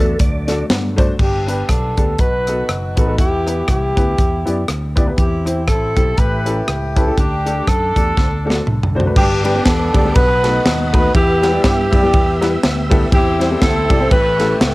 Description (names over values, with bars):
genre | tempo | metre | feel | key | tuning
uptempo gospel | 120 BPM | 4/4 | swing 58% on 8ths | G major | A4 = 440 Hz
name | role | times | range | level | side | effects
clear upright piano | accompaniment | 0.0-14.7 s | G2 to D5 | -21 LUFS | left 1 dB | cassette tape
pipe organ, principal | sustained chords | 0.0-1.2 s | D3 to D4 | -31 LUFS | equal | none
tonewheel organ | sustained chords | 0.0-0.7, 9.2-14.7 s | A4 to E6 | -26 LUFS | right 2 dB | fast rotary speaker, chorus vibrato, cassette tape
fingered electric bass | bass | 0.0-14.7 s | F#1 to G2 | -21 LUFS | equal | none
crisp fusion drum kit | drums | 0.2-14.7 s | crash cymbal, hi-hat, kick drum, ride cymbal, rim click, snare drum, toms | -16 LUFS | equal | cassette tape
mellow horn section | melody | 1.2-14.7 s | B3 to B4 | -18 LUFS | equal | cassette tape, analog delay
room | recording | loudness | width
studio ambience | home recording on cassette | -13 LUFS | side -20 dB against mid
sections
0.0-1.2 A section; 1.2-9.2 B section; 9.2-14.7 C section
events
tonewheel organ solo 0.0-1.2; drum fill 8.2-9.2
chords
0.0 D; 1.2 G; 2.2 B7; 3.2 Em; 5.2 C/E; 6.2 A7; 7.2 Dsus4; 8.2 D; 9.2 G; 10.2 B7; 11.1 Em; 13.1 C/E; 14.1 A7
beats
0.20 0.69 | 1.19 1.69 2.19 2.69 | 3.19 3.69 4.18 4.68 | 5.18 5.68 6.18 6.68 | 7.18 7.67 8.17 8.67 | 9.16 9.66 10.16 10.65 | 11.15 11.64 12.13 12.63 | 13.12 13.62 14.11 14.60